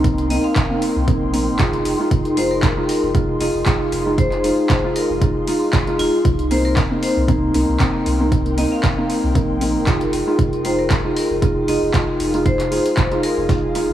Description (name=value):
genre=deep house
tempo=116 BPM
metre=4/4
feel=swing 54% on 16ths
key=F minor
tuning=A4 = 438 Hz
part: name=felt-muted upright piano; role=stabs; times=0.0-13.9 s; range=Ab3 to F4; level=-20 LUFS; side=equal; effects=sidechain pumping, low-pass filter, analog delay
part: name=warm sub bass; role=bass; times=0.0-13.9 s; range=Eb1 to F2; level=-25 LUFS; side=equal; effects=sidechain pumping
part: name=breakbeat sampler-style drum kit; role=drums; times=0.0-13.9 s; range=hi-hat, snare drum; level=-34 LUFS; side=left 2 dB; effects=high-pass filter on hats, high-pass filter on snare
part: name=electronic kick drum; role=drums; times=0.0-13.6 s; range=none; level=-20 LUFS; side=right 1 dB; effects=overdrive
part: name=ethereal airy pad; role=texture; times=0.0-13.9 s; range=Eb4 to C6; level=-26 LUFS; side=equal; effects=ensemble chorus, built-in reverb, sidechain pumping
part: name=vibraphone with hard mallets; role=melody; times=0.3-13.4 s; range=F4 to F5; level=-25 LUFS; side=left 3 dB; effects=analog delay
part: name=deep house drum kit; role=drums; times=0.3-13.9 s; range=handclaps, hi-hat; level=-27 LUFS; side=equal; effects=overdrive
room=light reverb, digital ambience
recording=dry, gritty hardware recording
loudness=-16 LUFS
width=side -12 dB against mid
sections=0.0-13.9 A section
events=filter sweep on felt piano 0.0-13.9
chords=0.0 Cm7; 1.9 Fm7; 6.3 Cm7; 10.1 Fm7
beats=| 0.04 0.56 1.08 1.60 | 2.11 2.63 3.15 3.67 | 4.18 4.70 5.22 5.73 | 6.25 6.77 7.29 7.80 | 8.32 8.84 9.36 9.87 | 10.39 10.91 11.42 11.94 | 12.46 12.97 13.49